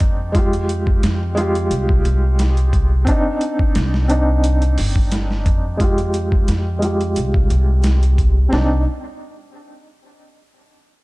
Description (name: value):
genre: trip hop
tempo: 88 BPM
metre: 4/4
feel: swing 53% on 16ths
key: C minor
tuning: A4 = 436 Hz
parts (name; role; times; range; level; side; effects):
- felt-muted upright piano; accompaniment; 0.0-8.8 s; Ab3 to G4; -21 LUFS; equal; tremolo, low-pass filter, tape echo
- upright bass; bass; 0.0-8.8 s; G1 to F2; -17 LUFS; equal; tube saturation
- dusty soul sampler-style drum kit; drums; 0.0-8.7 s; hi-hat, kick drum, snare drum; -19 LUFS; equal; overdrive, small room ambience
room: studio reverb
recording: dark, warm production, lossy compression artefacts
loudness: -15 LUFS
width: side -22 dB against mid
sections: 0.0-8.5 A section; 8.5-11.0 B section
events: filter sweep on upright bass 0.0-8.5; filter sweep on felt piano 0.0-8.5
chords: 0.3 Fmadd9; 3.1 Cmadd9; 5.8 Fmadd9; 8.5 Cmadd9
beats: | 0.34 1.03 1.71 2.39 | 3.07 3.75 4.43 5.12 | 5.80 6.48 7.16 7.84 | 8.53